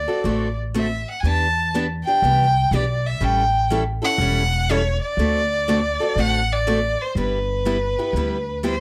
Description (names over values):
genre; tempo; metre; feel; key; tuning
acoustic string swing (jazz manouche); 122 BPM; 4/4; swing 65% on 8ths; unclear; A4 = 440 Hz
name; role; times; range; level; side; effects
rich violin; melody; 0.0-8.8 s; B4 to A5; -24 LUFS; equal; none
upright bass; bass; 0.0-8.8 s; E1 to E2; -26 LUFS; equal; none
picked steel-string acoustic guitar; accompaniment; 0.1-8.8 s; D3 to A4; -26 LUFS; equal; none
room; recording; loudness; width
light reverb; close, detailed microphones; -21 LUFS; mono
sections
0.0-8.8 A section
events
none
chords
0.0 D7; 1.2 Em7; 3.2 A7; 5.2 D7; 7.1 G6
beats
0.25 0.74 | 1.24 1.73 2.22 2.71 | 3.21 3.70 4.19 4.68 | 5.18 5.67 6.16 6.65 | 7.15 7.64 8.13 8.62